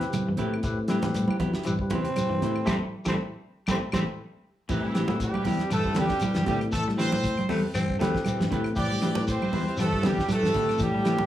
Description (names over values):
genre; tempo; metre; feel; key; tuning
afrobeat; 118 BPM; 4/4; swing 55% on 16ths; A minor; A4 = 440 Hz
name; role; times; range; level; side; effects
barky tine electric piano; accompaniment; 0.0-10.8 s; C4 to B4; -35 LUFS; left 3 dB; overdrive
electric guitar at the edge of break-up; arpeggios; 0.0-11.2 s; C3 to A3; -32 LUFS; left 3 dB; none
semi-hollow electric guitar; stabs; 0.0-11.2 s; C4 to B4; -34 LUFS; right 5 dB; none
damped 70s drum kit; drums; 0.0-11.2 s; crash cymbal, hi-hat, kick drum, snare drum; -33 LUFS; equal; none
fingered electric bass; bass; 0.1-11.3 s; A1 to A2; -29 LUFS; equal; none
claves; percussion; 0.1-11.2 s; none; -45 LUFS; left 4 dB; none
congas; percussion; 0.1-11.3 s; none; -31 LUFS; right 3 dB; none
shekere; percussion; 0.1-11.2 s; none; -37 LUFS; left 1 dB; none
growling tenor saxophone; melody; 1.9-4.0 s; C4; -31 LUFS; right 1 dB; none
brilliant horn section; melody; 4.7-11.3 s; E4 to D5; -30 LUFS; right 1 dB; none
growling tenor saxophone; second line; 4.7-11.3 s; E3 to G4; -34 LUFS; equal; tape echo
raspy baritone saxophone; second line; 7.5-8.6 s; G3 to C4; -34 LUFS; left 3 dB; tape echo
room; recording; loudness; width
moderate large studio reverb, RT60 0.9 s, studio reverb; small room reverb; -24 LUFS; side -12 dB against mid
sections
0.0-4.7 A section; 4.7-11.3 B section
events
tenor saxophone solo 0.0-4.7; band accent 2.7-4.7; drum fill 3.7-4.7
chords
0.0 Am9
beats
0.12 | 0.63 1.14 1.65 2.16 | 2.67 3.17 3.68 4.19 | 4.70 5.20 5.71 6.22 | 6.73 7.24 7.75 8.25 | 8.76 9.27 9.78 10.29 | 10.80